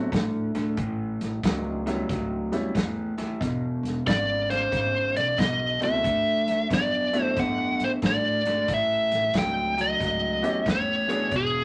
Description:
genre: electric blues shuffle.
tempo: 91 BPM.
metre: 4/4.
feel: swing 65% on 8ths.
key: unclear.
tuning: A4 = 441 Hz.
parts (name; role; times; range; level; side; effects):
warm upright piano; accompaniment; 0.0-11.3 s; G3 to G#4; -34 LUFS; equal; none.
electric guitar through a small old amp; riff; 0.0-11.6 s; E2 to B3; -31 LUFS; equal; none.
upright bass; bass; 0.0-11.6 s; E1 to A2; -38 LUFS; equal; none.
vintage drum kit; drums; 0.1-11.5 s; hi-hat, kick drum, snare drum; -32 LUFS; equal; none.
biting lead guitar; melody; 4.1-11.6 s; G#4 to G5; -26 LUFS; equal; overdrive.
room: moderate small room reverb, RT60 0.6 s.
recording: none.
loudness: -25 LUFS.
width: mono.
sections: 0.0-11.6 A section.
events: none.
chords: 0.0 D7; 0.8 A7; 3.4 E; 6.0 D; 8.7 A7.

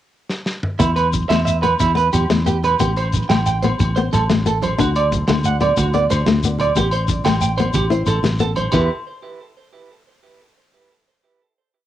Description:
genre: highlife guitar band.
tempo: 121 BPM (dotted quarters).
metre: 12/8.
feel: straight.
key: E minor.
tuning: A4 = 440 Hz.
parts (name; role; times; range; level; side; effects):
warm soul drum kit; drums; 0.3-8.8 s; hi-hat, kick drum, snare drum, splash cymbal, toms; -25 LUFS; equal; cassette tape.
flamenco guitar; accompaniment; 0.8-8.8 s; E3 to E4; -21 LUFS; left 6 dB; none.
electric guitar at the edge of break-up; arpeggios; 0.8-8.9 s; E4 to G5; -20 LUFS; right 6 dB; tape echo.
fingered electric bass; bass; 0.8-8.9 s; A1 to E2; -20 LUFS; equal; none.
agogo bells; percussion; 0.8-8.8 s; none; -26 LUFS; left 4 dB; none.
congas; percussion; 0.8-8.9 s; none; -27 LUFS; right 5 dB; none.
shekere; percussion; 0.8-8.9 s; none; -24 LUFS; left 3 dB; none.
room: light reverb.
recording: home recording on cassette.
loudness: -15 LUFS.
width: side -12 dB against mid.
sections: 0.0-0.8 pickup bar; 0.8-8.7 groove; 8.7-10.7 final chord.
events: drum fill 0.3-0.8.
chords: 0.0 N.C.; 0.8 E5; 2.8 Am7; 4.8 D; 6.8 Am7; 8.7 Em.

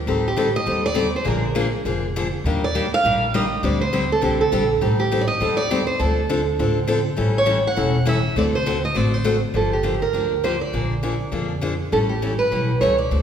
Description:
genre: acoustic string swing (jazz manouche).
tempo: 202 BPM.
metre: 4/4.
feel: swing 59% on 8ths.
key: unclear.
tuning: A4 = 435 Hz.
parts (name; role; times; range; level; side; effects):
picked steel-string acoustic guitar; accompaniment; 0.1-13.2 s; D3 to A4; -22 LUFS; left 2 dB; none.
upright bass; bass; 0.1-13.2 s; E1 to F2; -24 LUFS; equal; none.
picked steel-string acoustic guitar; melody; 0.3-13.2 s; G4 to F#5; -22 LUFS; right 2 dB; none.
room: wet recital hall reverb, RT60 1.6 s.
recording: recorded in a church or concert hall.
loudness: -18 LUFS.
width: side -8 dB against mid.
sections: 0.1-9.5 A section; 9.5-13.2 B section.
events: none.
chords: 0.1 Am7b5; 1.3 Bb7; 2.4 Ebmaj9; 3.6 D7sus4; 4.8 Am7b5; 6.0 Dm7; 7.2 A7; 8.4 D7; 9.5 Gm7; 10.7 Bb7; 11.9 A7.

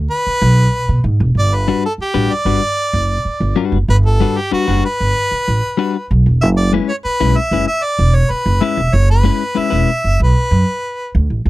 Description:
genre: funk.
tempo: 95 BPM.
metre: 4/4.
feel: straight.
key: unclear.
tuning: A4 = 440 Hz.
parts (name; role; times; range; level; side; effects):
upright bass; bass; 0.0-11.5 s; E1 to B2; -14 LUFS; right 1 dB; none.
clear harmonica; melody; 0.1-11.1 s; F#4 to E5; -18 LUFS; equal; none.
clean electric guitar; accompaniment; 1.7-9.9 s; G3 to B4; -17 LUFS; left 8 dB; vibrato effect.
room: little or no reverb.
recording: dry, close 1970s-style studio recording.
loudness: -13 LUFS.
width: side -17 dB against mid.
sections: 0.0-1.4 A section; 1.4-11.5 B section.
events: none.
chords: 0.0 E; 1.4 Gmaj7; 6.4 F#9sus4.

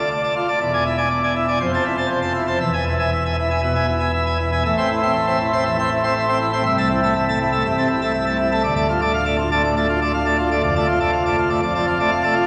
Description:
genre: classical, organ toccata.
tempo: 121 BPM.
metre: 4/4.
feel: straight.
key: A minor.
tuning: A4 = 441 Hz.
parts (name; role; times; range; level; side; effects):
pipe organ, plenum; solo; 0.0-12.5 s; C1 to C6; -19 LUFS; equal; none.
room: wet cathedral reverb, RT60 4.5 s.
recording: none.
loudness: -19 LUFS.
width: mono.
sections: 0.0-4.6 A section; 4.6-12.5 B section.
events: none.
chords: 0.0 Dm; 0.6 E7; 1.6 Fmaj7; 2.6 E; 4.6 Am; 6.6 Am/C; 8.6 Dm; 10.6 Dm/F.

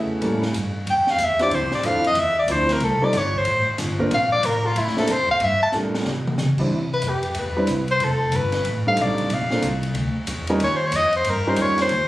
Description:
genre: jazz, small-group swing and bop.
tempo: 185 BPM.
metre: 4/4.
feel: swing 64% on 8ths.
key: F major.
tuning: A4 = 441 Hz.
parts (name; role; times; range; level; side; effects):
warm grand piano; accompaniment; 0.0-11.9 s; F3 to D5; -23 LUFS; right 1 dB; none.
upright bass; bass; 0.0-12.1 s; F1 to Db3; -26 LUFS; equal; none.
open jazz drum kit; drums; 0.2-12.0 s; crash cymbal, hi-hat, kick drum, ride cymbal, snare drum, toms; -29 LUFS; left 1 dB; none.
edgy soprano saxophone; melody; 0.9-12.1 s; E4 to A5; -20 LUFS; left 1 dB; none.
room: light reverb.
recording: recorded on a phone in the room, club reverb, compression.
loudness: -19 LUFS.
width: side -16 dB against mid.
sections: 0.0-6.7 A section; 6.7-12.1 B section.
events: drum fill 5.7-6.4; soprano saxophone solo 6.7-12.1.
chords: 0.2 A7b9; 1.5 Dm9; 2.8 Fadd9; 4.1 Bbmaj7(no3); 5.4 Gm9; 6.1 C; 6.7 Cmaj7; 8.0 F13; 9.3 Bb; 10.6 Eb7.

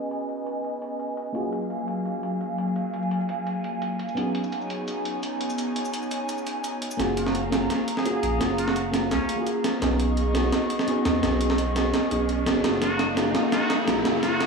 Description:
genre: liquid drum and bass.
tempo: 170 BPM.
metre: 4/4.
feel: straight.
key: F# major.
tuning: A4 = 436 Hz.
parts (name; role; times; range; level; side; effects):
mellow FM electric piano; accompaniment; 0.0-14.5 s; A#3 to G#4; -27 LUFS; equal; chorus, cassette tape, tape echo.
airy breathy pad; sustained chords; 0.0-14.5 s; F#3 to C#6; -29 LUFS; equal; chorus.
breakbeat sampler-style drum kit; drums; 0.1-14.5 s; hi-hat, shaker, snare drum; -28 LUFS; right 3 dB; none.
saturated sub bass; bass; 7.0-14.5 s; F#1 to D#2; -30 LUFS; equal; tube saturation.
riser; sound effects; 9.3-14.5 s; none; -32 LUFS; right 1 dB; none.
trumpet with straight mute; melody; 7.2-9.4, 12.8-14.4 s; C#4 to G#4; -32 LUFS; equal; low-pass filter, analog delay.
room: wet plate reverb, RT60 1.1 s, digital ambience.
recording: dreamy mix soaked in reverb, high-pass filter, low-pass filter, studio reverb.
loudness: -23 LUFS.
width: side -4 dB against mid.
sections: 0.0-7.0 A section; 7.0-14.5 B section.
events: filter sweep 0.0-7.0; build-up 7.0-14.5; drum fill 7.0-14.5; filter sweep on muted trumpet 7.0-14.5; riser 9.3-14.5.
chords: 0.0 B69; 1.3 F#maj9; 4.2 B69; 7.0 F#maj9; 9.8 B69; 12.6 F#maj9.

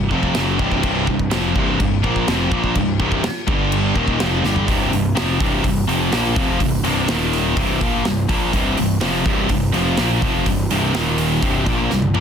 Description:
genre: heavy metal.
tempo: 125 BPM.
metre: 4/4.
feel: straight.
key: C minor.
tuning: A4 = 440 Hz.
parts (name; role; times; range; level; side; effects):
heavy high-gain guitar; riff; 0.0-12.2 s; C2 to Bb3; -21 LUFS; left 13 dB; distortion.
scooped high-gain guitar; riff; 0.0-12.2 s; C2 to Bb3; -21 LUFS; right 9 dB; distortion.
fuzz picked electric bass; bass; 0.0-12.2 s; C1 to Bb1; -24 LUFS; equal; overdrive.
big rock drum kit; drums; 0.1-12.2 s; crash cymbal, hi-hat, kick drum, snare drum, toms; -22 LUFS; equal; none.
room: little or no reverb.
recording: dense, heavily limited modern master.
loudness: -16 LUFS.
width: side -7 dB against mid.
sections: 0.0-4.7 A section; 4.7-12.2 B section.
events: drum fill 4.4, 11.9.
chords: 0.0 C5; 3.5 G5; 4.0 Cm; 4.7 C5; 7.1 Eb5; 7.6 C5; 10.9 Eb5; 11.4 C5.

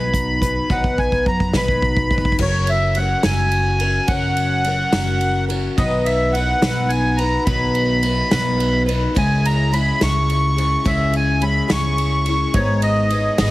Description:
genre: indie folk with a building arrangement.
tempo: 71 BPM (dotted quarters).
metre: 6/8.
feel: straight.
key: F# mixolydian.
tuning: A4 = 441 Hz.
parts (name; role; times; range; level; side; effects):
accordion; melody; 0.0-13.5 s; C#5 to C#6; -21 LUFS; equal; light tremolo tuning, analog delay.
picked twelve-string acoustic guitar; accompaniment; 0.0-13.5 s; G#2 to B4; -22 LUFS; left 2 dB; none.
upright bass; bass; 0.0-13.5 s; F#1 to F#2; -21 LUFS; equal; none.
unplugged drum kit; drums; 0.1-13.5 s; crash cymbal, hi-hat, kick drum, ride cymbal, snare drum; -23 LUFS; equal; none.
room: small room reverb.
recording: heavily compressed radio sound.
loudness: -16 LUFS.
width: side -17 dB against mid.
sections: 0.0-2.4 A section; 2.4-13.5 B section.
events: build-up 0.0-2.4; drum fill 0.0-2.4.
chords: 0.0 B; 2.4 F#; 5.8 B; 9.2 C#m; 12.5 G#m.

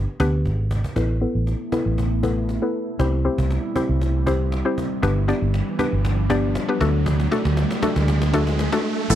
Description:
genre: dance-pop.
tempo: 118 BPM.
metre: 4/4.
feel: straight.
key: A dorian.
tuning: A4 = 440 Hz.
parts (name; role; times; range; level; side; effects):
mallet-like synth pluck; accompaniment; 0.0-9.2 s; E3 to D5; -24 LUFS; left 2 dB; chorus, low-pass filter.
vintage muted fingered electric bass; bass; 0.0-9.2 s; G1 to D2; -21 LUFS; equal; none.
cajon; drums; 0.2-9.2 s; none; -31 LUFS; equal; none.
ethereal airy pad; sustained chords; 1.4-9.1 s; F#3 to E4; -29 LUFS; equal; ensemble chorus, built-in reverb, low-pass filter.
riser and downlifter; sound effects; 3.7-9.2 s; none; -30 LUFS; right 3 dB; none.
room: little or no reverb.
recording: none.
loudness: -19 LUFS.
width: side -11 dB against mid.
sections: 1.0-9.1 A section.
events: drum fill 0.5-1.0, 1.0-9.1; build-up 1.0-9.1; filter sweep 1.0-9.1; riser 3.7-9.1.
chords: 0.0 G; 1.0 Asus2; 3.0 C; 5.0 G; 6.8 D.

